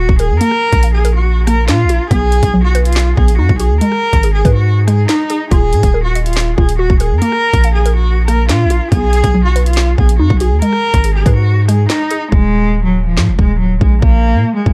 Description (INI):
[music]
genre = hip hop, drill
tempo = 141 BPM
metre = 4/4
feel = half-time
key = Eb minor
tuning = A4 = 438 Hz
[part]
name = warm cello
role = melody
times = 0.0-14.7 s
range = F3 to Bb4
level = -19 LUFS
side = equal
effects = tape echo
[part]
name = hollow square pluck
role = accompaniment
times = 0.0-12.3 s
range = F#3 to F5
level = -21 LUFS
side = equal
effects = chorus
[part]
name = long sustained 808-style bass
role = bass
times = 0.0-14.7 s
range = Eb1 to Bb2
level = -15 LUFS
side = equal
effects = none
[part]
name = drill drum kit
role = drums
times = 0.1-14.7 s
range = handclaps, hi-hat, kick drum, rim click, snare drum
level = -17 LUFS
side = equal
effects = none
[sound]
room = little or no reverb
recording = dark, warm production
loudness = -12 LUFS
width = mono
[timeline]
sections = 0.0-12.3 A section; 12.3-14.7 B section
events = hi-hats muted 12.3-14.7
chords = 0.4 Bb; 2.1 B; 3.8 Abm; 5.5 Ebmadd9; 7.2 Bb; 8.9 B; 10.6 Abm; 12.3 Eb5; 14.0 Bb5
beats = | 0.41 0.83 1.26 1.68 | 2.11 2.54 2.96 3.39 | 3.81 4.24 4.66 5.09 | 5.51 5.94 6.37 6.79 | 7.22 7.64 8.07 8.49 | 8.92 9.34 9.77 10.20 | 10.62 11.05 11.47 11.90 | 12.32 12.75 13.17 13.60 | 14.02 14.45